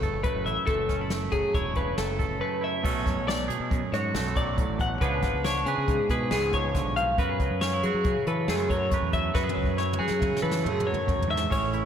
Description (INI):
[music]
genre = math rock and midwest emo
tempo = 138 BPM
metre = 5/4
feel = straight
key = unclear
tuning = A4 = 437 Hz
[part]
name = twangy electric guitar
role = accompaniment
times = 0.0-11.9 s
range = F#2 to B4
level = -30 LUFS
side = right 7 dB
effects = none
[part]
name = twelve-string electric guitar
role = arpeggios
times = 0.0-11.9 s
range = G#4 to F#5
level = -28 LUFS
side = left 3 dB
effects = lush chorus
[part]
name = growling fingered electric bass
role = bass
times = 0.0-11.9 s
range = E1 to F#3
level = -31 LUFS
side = equal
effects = overdrive
[part]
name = jazz brush drum kit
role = drums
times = 0.0-11.8 s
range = crash cymbal, hi-hat, kick drum, snare drum, toms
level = -30 LUFS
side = equal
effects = none
[sound]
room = wet church reverb, RT60 2.9 s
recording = dreamy mix soaked in reverb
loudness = -24 LUFS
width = side -8 dB against mid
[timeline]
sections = 0.0-2.8 A section; 2.8-11.5 B section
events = drum fill 9.3-11.5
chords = 0.0 F#m7; 2.8 Bm9; 5.0 C#7b9; 7.2 F#m11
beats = 0.24 | 0.67 1.11 1.54 1.98 2.41 | 2.85 3.28 3.71 4.14 4.58 | 5.01 5.45 5.88 6.31 6.75 | 7.18 7.61 8.04 8.48 8.91 | 9.35 9.78 10.21 10.65 11.08 | 11.52